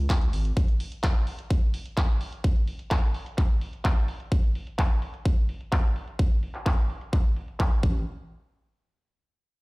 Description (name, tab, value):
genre	EDM, festival progressive house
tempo	128 BPM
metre	4/4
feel	straight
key	unclear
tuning	A4 = 440 Hz
part	saturated sub bass	bass	0.0-0.5, 7.8-8.1 s	G#1 to C#2	-26 LUFS	equal	sidechain pumping
part	big-room dance drum kit	drums	0.1-7.7 s	handclaps, hi-hat	-34 LUFS	equal	low-pass filter on hats, low-pass filter on snare, low-pass filter on room
part	electronic kick drum	drums	0.1-7.9 s	none	-23 LUFS	equal	none
room	little or no reverb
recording	played on a big sound system in a bare room, stone room reverb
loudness	-24 LUFS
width	side -25 dB against mid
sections	0.0-8.1 A section; 8.1-9.6 B section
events	filter sweep on drum 0.0-8.1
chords	none